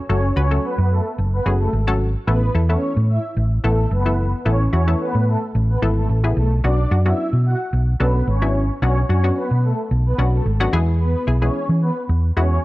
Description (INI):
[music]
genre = pop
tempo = 110 BPM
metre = 4/4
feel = straight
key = A major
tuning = A4 = 440 Hz
[part]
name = filtered supersaw swell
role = melody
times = 0.1-12.6 s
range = A3 to F#5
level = -25 LUFS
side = equal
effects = none
[part]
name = hollow square pluck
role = accompaniment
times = 0.1-12.6 s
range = E3 to B4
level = -24 LUFS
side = left 2 dB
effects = chorus
[part]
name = hollow-body short-scale fingered electric bass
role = bass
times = 0.1-12.6 s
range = F#1 to E3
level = -17 LUFS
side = equal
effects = none
[sound]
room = little or no reverb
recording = dry, gritty hardware recording, transformer saturation, nothing above 10.3 kHz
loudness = -16 LUFS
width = side -18 dB against mid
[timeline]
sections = 0.0-12.6 A section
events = none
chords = 0.0 F#m; 2.3 Asus2; 6.6 Bmadd9; 10.7 E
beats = | 0.09 0.64 1.19 1.73 | 2.28 2.82 3.37 3.91 | 4.46 5.00 5.55 6.09 | 6.64 7.18 7.73 8.28 | 8.82 9.37 9.91 10.46 | 11.00 11.55 12.09